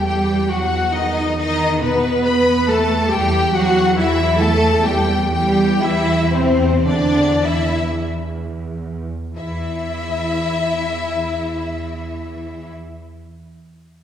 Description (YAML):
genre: classical, slow romantic movement for string orchestra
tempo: 29-47 BPM (dotted quarters)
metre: 6/8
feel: rubato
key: unclear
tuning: A4 = 441 Hz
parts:
  - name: rich studio violin section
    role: melody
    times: 0.0-12.7 s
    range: B4 to B5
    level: -22 LUFS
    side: left 4 dB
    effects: none
  - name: rich studio violin section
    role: second line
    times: 0.0-12.7 s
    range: B3 to B4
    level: -23 LUFS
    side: left 1 dB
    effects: none
  - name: dark studio viola section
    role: accompaniment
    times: 0.0-12.7 s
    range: B3 to B4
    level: -23 LUFS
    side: equal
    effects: none
  - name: rich studio double bass section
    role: bass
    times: 0.0-12.7 s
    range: E2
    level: -23 LUFS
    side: right 2 dB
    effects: none
  - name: warm studio cello section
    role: bass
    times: 0.0-12.7 s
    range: B2 to B3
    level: -23 LUFS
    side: right 2 dB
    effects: none
room: wet concert hall reverb, RT60 1.9 s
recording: heard from further back in the room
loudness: -16 LUFS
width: side -9 dB against mid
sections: 0.0-9.4 A section; 9.4-12.7 B section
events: slowing down 1.8-9.4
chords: 0.0 N.C.; 0.5 B7/E; 3.1 Em; 5.8 Cadd9/E; 9.4 N.C.